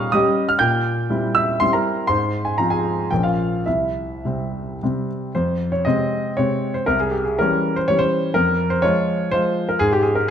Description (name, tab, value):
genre	classical, romantic triple-time dance for piano with dotted rhythms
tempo	99-132 BPM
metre	3/4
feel	rubato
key	F minor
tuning	A4 = 440 Hz
part	clear grand piano	solo	0.0-10.3 s	Bb1 to G6	-18 LUFS	equal	none
room	moderate recital hall reverb, RT60 1.3 s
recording	none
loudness	-18 LUFS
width	side -8 dB against mid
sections	0.0-5.3 A section; 5.3-10.3 B section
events	none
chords	0.0 Gdim/Bb; 0.6 C7/Bb; 2.1 Fm/Ab; 3.1 Bbm; 3.7 C; 5.3 Fm; 6.9 C; 8.3 Fm; 9.8 N.C.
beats	0.14 | 0.61 1.10 1.61 | 2.09 2.58 3.10 | 3.66 4.25 4.82 | 5.34 5.85 6.36 | 6.86 7.38 7.88 | 8.34 8.82 9.32 | 9.79 10.28